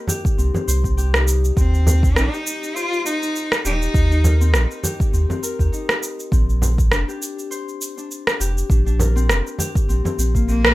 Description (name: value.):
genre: organic downtempo.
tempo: 101 BPM.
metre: 4/4.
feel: swing 56% on 16ths.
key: unclear.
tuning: A4 = 439 Hz.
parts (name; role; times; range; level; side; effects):
Celtic harp; arpeggios; 0.0-10.7 s; Bb3 to C5; -28 LUFS; left 4 dB; low-pass filter, ping-pong delay.
electronic shaker and rim click; drums; 0.1-10.7 s; none; -22 LUFS; right 1 dB; none.
frame drum; percussion; 0.1-10.2 s; none; -24 LUFS; right 1 dB; none.
electronic kick drum; drums; 0.2-10.5 s; none; -19 LUFS; equal; none.
warm sub bass; bass; 0.4-10.7 s; Eb1 to Eb2; -17 LUFS; equal; none.
clear cello; melody; 1.6-4.8, 10.5-10.7 s; Bb3 to F4; -24 LUFS; equal; ping-pong delay.
room: moderate studio reverb, RT60 0.6 s.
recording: rough home demo mix.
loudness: -17 LUFS.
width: side -18 dB against mid.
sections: 0.0-10.7 A section.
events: none.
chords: 0.0 Cm7; 1.6 Eb6; 6.3 Bb.